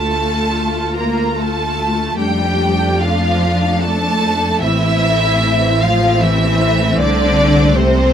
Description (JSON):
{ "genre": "classical, slow romantic movement for string orchestra", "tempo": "71-80 BPM", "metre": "3/4", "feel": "rubato", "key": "D minor", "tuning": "A4 = 440 Hz", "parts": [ { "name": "warm symphonic violin section", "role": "melody", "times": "0.0-8.1 s", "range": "C5 to Bb5", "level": "-18 LUFS", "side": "equal", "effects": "none" }, { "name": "rich symphonic violin section", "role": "second line", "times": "0.0-8.1 s", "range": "C4 to Bb4", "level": "-22 LUFS", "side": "right 1 dB", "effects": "none" }, { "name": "rich symphonic viola section", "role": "accompaniment", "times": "0.0-8.1 s", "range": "A3 to F4", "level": "-21 LUFS", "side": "left 1 dB", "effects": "none" }, { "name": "clear symphonic cello section", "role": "bass", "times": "0.0-8.1 s", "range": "C3 to Bb3", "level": "-20 LUFS", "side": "equal", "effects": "none" }, { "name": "rich studio double bass section", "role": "bass", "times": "0.0-8.1 s", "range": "A1 to F2", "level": "-19 LUFS", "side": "equal", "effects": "none" } ], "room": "light reverb", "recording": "close, detailed microphones", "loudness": "-13 LUFS", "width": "side -9 dB against mid", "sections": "0.0-8.1 A section", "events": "none", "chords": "0.0 Dm; 2.2 Dm/F; 4.6 Am; 7.0 Am/C", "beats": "0.54 1.37 | 2.19 3.00 3.82 | 4.63 5.44 6.22 | 7.00 7.76" }